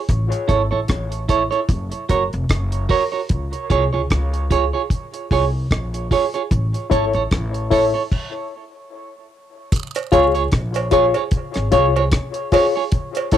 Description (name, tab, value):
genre	dub reggae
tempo	75 BPM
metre	4/4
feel	swing 56% on 16ths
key	Db major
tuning	A4 = 440 Hz
part	upright bass	bass	0.1-13.4 s	F1 to Db2	-22 LUFS	equal	none
part	deep reggae drum kit	drums	0.1-13.4 s	crash cymbal, hi-hat, kick drum, rim click	-20 LUFS	equal	none
part	clean electric guitar	accompaniment	0.5-13.4 s	E4 to C#5	-21 LUFS	right 7 dB	cassette tape, dub echo
part	overdriven reed electric piano	stabs	6.9-13.4 s	E4 to C#5	-20 LUFS	left 7 dB	harmonic tremolo, cassette tape, dub echo
part	jawbone-type rattle and cowbell	percussion	9.7-13.3 s	none	-28 LUFS	right 8 dB	dub echo
room	moderate studio reverb, RT60 0.5 s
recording	home recording on cassette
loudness	-16 LUFS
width	side -10 dB against mid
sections	0.0-9.7 A section; 9.7-13.4 B section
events	stop 8.1-9.7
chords	0.1 A; 1.7 Gb; 3.3 Db; 6.5 A; 8.1 N.C.; 9.7 Db